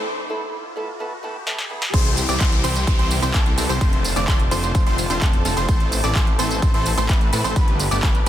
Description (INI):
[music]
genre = EDM, festival progressive house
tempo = 128 BPM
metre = 4/4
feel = straight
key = A minor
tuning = A4 = 436 Hz
[part]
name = fingerpicked old ladder-braced acoustic guitar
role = accompaniment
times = 0.0-1.8 s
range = A2 to A4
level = -30 LUFS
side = right 2 dB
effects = sidechain pumping, tape echo
[part]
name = lush unison pad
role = sustained chords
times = 0.0-8.3 s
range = E4 to A5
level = -32 LUFS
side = left 2 dB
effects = chorus, phaser, sidechain pumping
[part]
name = clear baby grand piano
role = arpeggios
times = 0.0-8.3 s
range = A5 to D6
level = -28 LUFS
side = right 2 dB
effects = sidechain pumping, tape echo
[part]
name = supersaw stab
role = riff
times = 0.0-8.3 s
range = D3 to D5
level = -25 LUFS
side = equal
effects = sidechain pumping, tape echo
[part]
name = riser and downlifter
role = sound effects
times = 0.0-5.7 s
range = none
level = -30 LUFS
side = left 1 dB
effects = none
[part]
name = big-room dance drum kit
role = drums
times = 1.5-8.3 s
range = crash cymbal, handclaps, hi-hat, snare drum, tambourine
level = -26 LUFS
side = right 1 dB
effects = high-pass filter on snare, small room ambience, high-pass filter on hats, high-pass filter on cymbals, high-pass filter on perc
[part]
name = detuned saw bass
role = bass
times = 1.9-8.3 s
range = F1 to A2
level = -24 LUFS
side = equal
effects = sidechain pumping
[part]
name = electronic kick drum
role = drums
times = 1.9-8.1 s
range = none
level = -18 LUFS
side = equal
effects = small room ambience
[sound]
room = light reverb, digital ambience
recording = dense, heavily limited modern master, high-pass filter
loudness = -17 LUFS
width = side -12 dB against mid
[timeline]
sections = 0.0-1.9 A section; 1.9-8.3 B section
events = build-up 0.0-1.9; riser 0.0-1.9; filter sweep 0.0-1.9; break 0.1-1.9; drum fill 1.5-1.9; drop 1.9-8.3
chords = 0.1 Asus2; 1.9 C; 3.8 F6; 5.7 Am; 7.6 Gadd9